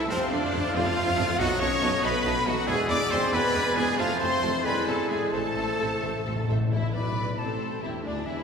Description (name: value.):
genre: classical, dramatic, fast romantic movement for symphony orchestra.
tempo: 91 BPM (dotted quarters).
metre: 6/8.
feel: rubato.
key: A minor.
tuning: A4 = 440 Hz.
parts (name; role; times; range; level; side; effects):
rich studio violin section; melody; 0.0-8.4 s; D4 to D6; -34 LUFS; left 4 dB; none.
dark clarinet; second line; 0.0-6.5 s; C5 to F5; -35 LUFS; equal; none.
rich studio violin section; second line; 0.0-8.4 s; G4 to A5; -38 LUFS; left 2 dB; none.
silver concert flute; second line; 0.0-8.4 s; C5 to D6; -34 LUFS; left 1 dB; none.
warm oboe; second line; 0.0-6.4 s; C5 to A5; -36 LUFS; right 1 dB; none.
clear bassoon; accompaniment; 0.0-6.5 s; G#3 to A3; -35 LUFS; right 2 dB; none.
rich symphonic viola section; accompaniment; 0.0-8.4 s; A3 to B4; -36 LUFS; right 1 dB; none.
mellow French horn section; sustained chords; 0.0-6.5 s; C3 to D4; -34 LUFS; left 2 dB; none.
concert harp; arpeggios; 0.0-8.4 s; A2 to C5; -38 LUFS; left 4 dB; none.
rich symphonic cello section; bass; 0.0-8.4 s; C4 to D5; -31 LUFS; right 2 dB; none.
warm studio double bass section; bass; 0.0-8.4 s; A1 to B2; -34 LUFS; right 2 dB; none.
bright trumpet; stabs; 0.1-6.5 s; C4 to D5; -32 LUFS; equal; none.
dark tuba; bass; 0.1-8.4 s; E1 to D2; -35 LUFS; right 2 dB; none.
timpani; percussion; 5.3-7.3 s; A2; -30 LUFS; left 1 dB; none.
room: wet church reverb, RT60 2.9 s.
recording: recorded in a church or concert hall.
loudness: -23 LUFS.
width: side -6 dB against mid.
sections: 0.0-6.7 A section; 6.7-8.4 B section.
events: timpani fill 5.3-6.7.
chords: 0.1 F; 1.4 B7; 2.7 E7; 4.0 F; 4.7 E7; 5.3 Am; 6.7 Am/E.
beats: | 0.10 0.75 | 1.39 2.04 | 2.68 3.33 | 3.98 4.65 | 5.33 6.03 | 6.72 7.38 | 8.04.